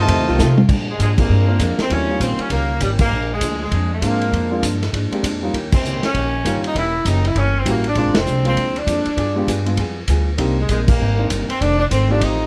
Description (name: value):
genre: jazz, big band swing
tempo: 198 BPM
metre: 4/4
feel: swing 62% on 8ths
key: Bb mixolydian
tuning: A4 = 440 Hz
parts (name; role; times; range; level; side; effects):
- clear trumpet section; melody; 0.0-0.5 s; F4 to A5; -23 LUFS; equal; none
- brilliant trombone section; second line; 0.0-0.6 s; C3 to A3; -26 LUFS; equal; none
- clear saxophone section; sustained chords; 0.0-0.7 s; Eb3 to F4; -27 LUFS; equal; none
- upright bass; bass; 0.0-12.5 s; E1 to C3; -22 LUFS; equal; none
- vintage hollow-body jazz guitar; accompaniment; 0.1-12.4 s; F2 to A4; -30 LUFS; equal; none
- vintage drum kit; drums; 0.1-12.3 s; crash cymbal, hi-hat, kick drum, ride cymbal, snare drum, toms; -25 LUFS; equal; none
- clear saxophone section; melody; 0.9-12.5 s; G3 to E4; -24 LUFS; equal; none
- warm baby grand piano; accompaniment; 1.2-12.5 s; Gb3 to Bb4; -26 LUFS; equal; none
room: light reverb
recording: close, detailed microphones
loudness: -18 LUFS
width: mono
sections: 0.7-12.5 A section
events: drum fill 0.4-0.7; band accent 1.1, 3.0, 5.7, 8.1, 10.8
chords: 0.1 F7; 0.7 Bb7; 1.9 Eb7; 3.1 Bb7; 5.5 Eb7; 6.8 Edim7; 8.0 Bb7; 9.2 G7b9; 10.4 Cm7; 11.6 F7